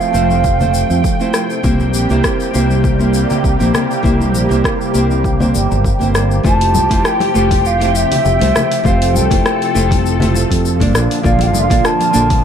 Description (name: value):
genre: sunset chillout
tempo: 100 BPM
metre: 4/4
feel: swing 54% on 16ths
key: F major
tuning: A4 = 440 Hz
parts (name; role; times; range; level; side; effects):
- mellow hollow wooden flute; melody; 0.0-1.3, 6.5-12.4 s; E5 to A5; -17 LUFS; right 1 dB; ping-pong delay
- nylon-string guitar; accompaniment; 0.0-12.4 s; A3 to D5; -19 LUFS; right 1 dB; auto-pan, tape echo
- lush unison pad; sustained chords; 0.0-12.4 s; Bb2 to G5; -19 LUFS; right 1 dB; chorus, phaser
- deep house drum kit; drums; 0.0-12.4 s; hi-hat, rim click, shaker; -22 LUFS; left 1 dB; none
- fretless electric bass; bass; 0.1-12.4 s; F1 to F2; -16 LUFS; equal; tube saturation, lush chorus
- congas; percussion; 0.3-12.4 s; none; -23 LUFS; left 4 dB; none
- electronic kick drum; drums; 0.4-12.4 s; none; -18 LUFS; equal; none
room: light reverb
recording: dark, warm production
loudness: -11 LUFS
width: side -8 dB against mid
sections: 0.0-6.4 A section; 6.4-12.4 B section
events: none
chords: 0.0 Fmaj7; 1.6 C7; 6.4 Fmaj9; 10.9 Bbmaj7